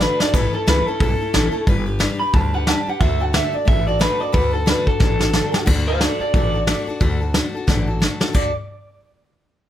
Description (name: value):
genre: rockabilly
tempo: 180 BPM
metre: 4/4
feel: swing 59% on 8ths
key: D major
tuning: A4 = 440 Hz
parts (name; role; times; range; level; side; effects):
- electric guitar through a small old amp; melody; 0.0-8.5 s; A4 to B5; -22 LUFS; right 1 dB; tape echo
- picked steel-string acoustic guitar; accompaniment; 0.0-8.5 s; A2 to B4; -26 LUFS; left 4 dB; none
- upright bass; bass; 0.0-8.5 s; G1 to D2; -22 LUFS; equal; none
- soft brush drum kit; drums; 0.0-8.4 s; crash cymbal, hi-hat, kick drum, snare drum, splash cymbal; -19 LUFS; equal; none
room: light reverb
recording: none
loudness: -16 LUFS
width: side -11 dB against mid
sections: 0.0-5.7 A section; 5.7-8.3 B section; 8.3-9.7 C section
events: drum fill 0.0-0.3, 5.0-5.7, 7.7-8.3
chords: 0.3 A; 1.7 G; 3.0 D